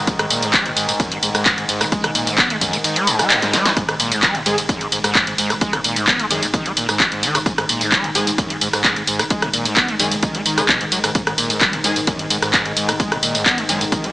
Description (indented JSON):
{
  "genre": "driving peak-time techno",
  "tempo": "130 BPM",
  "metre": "4/4",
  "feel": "straight",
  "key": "G# minor",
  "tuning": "A4 = 440 Hz",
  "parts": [
    { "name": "saturated sub bass", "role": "bass", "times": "0.0-14.1 s", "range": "G#1", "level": "-39 LUFS", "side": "equal", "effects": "none" },
    { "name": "analog drone", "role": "drone", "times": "0.0-14.1 s", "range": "G#2 to D#3", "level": "-27 LUFS", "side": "equal", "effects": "chorus, sidechain pumping" },
    { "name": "screaming distorted acid line", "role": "riff", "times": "0.1-14.1 s", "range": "F#2 to B3", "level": "-23 LUFS", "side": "equal", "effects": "distortion, ensemble chorus, sidechain pumping, dub echo" },
    { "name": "electronic kick drum", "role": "drums", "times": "0.1-14.0 s", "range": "none", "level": "-23 LUFS", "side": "equal", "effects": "overdrive" },
    { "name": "punchy analog drum machine", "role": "drums", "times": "0.1-14.1 s", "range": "handclaps, hi-hat, ride cymbal, rim click, snare drum, tambourine", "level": "-17 LUFS", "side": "equal", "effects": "none" },
    { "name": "rave stab", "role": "stabs", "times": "4.5-13.8 s", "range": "D#3 to G#4", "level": "-26 LUFS", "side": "equal", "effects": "chorus, built-in reverb, sidechain pumping, dub echo" }
  ],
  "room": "light reverb",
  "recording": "small speaker sound",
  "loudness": "-15 LUFS",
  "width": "side -19 dB against mid",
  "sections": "0.0-14.1 A section",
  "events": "drum fill 3.4-3.8",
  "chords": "0.0 G#5"
}